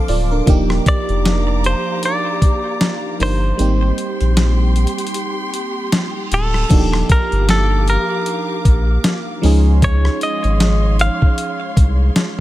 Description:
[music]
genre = contemporary R&B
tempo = 77 BPM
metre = 4/4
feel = swing 58% on 16ths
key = unclear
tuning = A4 = 440 Hz
[part]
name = FM electric piano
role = accompaniment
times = 0.0-12.4 s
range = F3 to F5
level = -22 LUFS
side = right 3 dB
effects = chorus
[part]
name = warm studio string section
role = sustained chords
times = 0.0-12.4 s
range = Bb3 to D6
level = -28 LUFS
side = left 2 dB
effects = sidechain pumping
[part]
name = saturated sub bass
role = bass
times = 0.1-12.1 s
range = D1 to Db2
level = -15 LUFS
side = equal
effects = none
[part]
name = dusty soul sampler-style drum kit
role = drums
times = 0.1-12.4 s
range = crash cymbal, hi-hat, kick drum, rim click, snare drum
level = -16 LUFS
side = equal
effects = none
[part]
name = direct-recorded clean electric guitar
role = melody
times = 0.9-12.4 s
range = A4 to F5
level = -22 LUFS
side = equal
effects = digital delay
[part]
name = reverse cymbal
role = sound effects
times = 5.8-6.7 s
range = none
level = -32 LUFS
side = right 7 dB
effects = none
[sound]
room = little or no reverb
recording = none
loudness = -14 LUFS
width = side -15 dB against mid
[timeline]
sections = 0.0-6.7 A section; 6.7-12.4 B section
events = kick muted 3.6-6.7; reverse cymbal 5.8-6.7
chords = 0.5 Ebmaj9; 3.6 Abmaj9 (rootless); 6.7 Ebmaj9; 9.4 Dbmaj9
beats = | 0.47 1.25 2.03 2.81 | 3.59 4.37 5.15 5.93 | 6.71 7.49 8.27 9.04 | 9.82 10.60 11.38 12.16

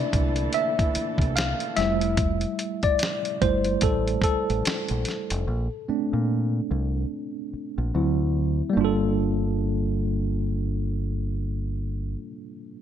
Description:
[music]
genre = R&B, neo-soul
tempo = 73 BPM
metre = 4/4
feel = swing 60% on 16ths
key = G dorian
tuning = A4 = 438 Hz
[part]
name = tine electric piano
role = accompaniment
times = 0.0-12.8 s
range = F#3 to F5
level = -26 LUFS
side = right 1 dB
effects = overdrive, medium stereo tremolo
[part]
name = dark studio string section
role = sustained chords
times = 0.0-2.2 s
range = Bb2 to A4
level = -33 LUFS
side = right 2 dB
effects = none
[part]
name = deep dub fingered electric bass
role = bass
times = 0.1-12.2 s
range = F1 to Bb2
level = -26 LUFS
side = equal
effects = none
[part]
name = dusty soul sampler-style drum kit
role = drums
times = 0.1-5.5 s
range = hi-hat, kick drum, snare drum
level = -26 LUFS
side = equal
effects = none
[sound]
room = light reverb, digital ambience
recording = bright 1980s-style digital production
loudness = -23 LUFS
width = side -9 dB against mid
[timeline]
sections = 0.0-8.8 A section; 8.8-12.0 B section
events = tine electric piano solo 0.0-8.8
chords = 0.0 C13; 1.8 Fmaj7; 5.5 Bbmaj9; 7.9 D7; 8.8 Gm9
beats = 0.53 1.36 | 2.18 3.00 3.82 4.64 | 5.47 6.29 7.11 7.93 | 8.75 9.58 10.40 11.22

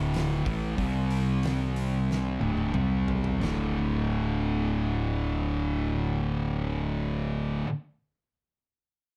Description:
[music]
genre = stoner and doom metal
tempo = 88-95 BPM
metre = 4/4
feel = straight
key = unclear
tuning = A4 = 438 Hz
[part]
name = thick fuzz guitar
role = riff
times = 0.0-7.7 s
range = D2 to C4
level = -32 LUFS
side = equal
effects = distortion
[part]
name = thick fuzz guitar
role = riff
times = 0.0-7.7 s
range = D2 to C4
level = -34 LUFS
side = equal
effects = distortion
[part]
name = fuzz fingered electric bass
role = bass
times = 0.0-7.6 s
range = D1 to C2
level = -34 LUFS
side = equal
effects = overdrive
[part]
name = oversized low-tuned drum kit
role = drums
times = 0.1-3.6 s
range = hi-hat, kick drum, snare drum, toms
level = -38 LUFS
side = equal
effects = none
[sound]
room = moderate studio ambience, RT60 0.5 s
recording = dark, warm production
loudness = -28 LUFS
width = mono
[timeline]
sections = 0.0-3.4 A section; 3.4-6.2 B section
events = slowing down 0.0-3.4; drum fill 2.1-3.4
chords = 0.0 D5; 0.8 C5; 2.4 D5; 2.7 C5; 3.4 D5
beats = 0.14 | 0.78 1.42 2.08 2.74 | 3.42 4.11 4.79 5.47

